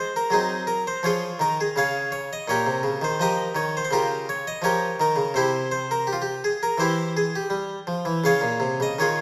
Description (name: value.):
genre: classical, baroque-style suite movement for harpsichord.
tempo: 83 BPM.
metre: 4/4.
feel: rubato.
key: unclear.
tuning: A4 = 440 Hz.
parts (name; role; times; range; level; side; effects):
harpsichord; solo; 0.0-9.2 s; Bb2 to F5; -24 LUFS; equal; none.
room: moderate recital hall reverb, RT60 1.7 s.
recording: none.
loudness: -24 LUFS.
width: mono.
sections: 0.0-9.2 A section.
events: none.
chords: 0.0 Ab7; 1.0 Db; 2.5 Gm7b5/Bb; 5.4 C; 6.8 Em; 8.3 Db.